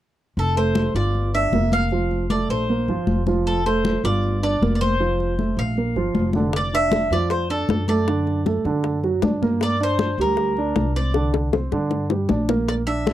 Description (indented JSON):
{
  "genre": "latin, Cuban son and guajira",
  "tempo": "156 BPM",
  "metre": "4/4",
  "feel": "straight",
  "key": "F major",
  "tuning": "A4 = 440 Hz",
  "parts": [
    { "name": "bowl-back mandolin", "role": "melody", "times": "0.4-13.1 s", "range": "A4 to F5", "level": "-25 LUFS", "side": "left 1 dB", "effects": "none" },
    { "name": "upright bass", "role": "bass", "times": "0.4-13.1 s", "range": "F1 to G2", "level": "-24 LUFS", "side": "equal", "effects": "none" },
    { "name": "congas", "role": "percussion", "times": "0.4-13.1 s", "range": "none", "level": "-26 LUFS", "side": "left 2 dB", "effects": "none" },
    { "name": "dark grand piano", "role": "arpeggios", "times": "0.6-13.1 s", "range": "D3 to F5", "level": "-23 LUFS", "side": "right 3 dB", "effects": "none" },
    { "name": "bongos", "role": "percussion", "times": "6.5-13.1 s", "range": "none", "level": "-25 LUFS", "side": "left 8 dB", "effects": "none" }
  ],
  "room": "light reverb",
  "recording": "dry, close 1970s-style studio recording",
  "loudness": "-19 LUFS",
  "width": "side -13 dB against mid",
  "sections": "0.4-6.5 A section; 6.5-13.1 B section",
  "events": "drum fill 11.1-12.7",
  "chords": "0.4 Fadd9; 1.1 Gm7; 1.9 F; 2.7 Bbsus2; 3.5 Fadd9; 4.2 Gm7; 5.0 F; 5.8 Bb; 6.5 F6; 8.1 D/F#; 9.6 Gm; 11.1 Csus2"
}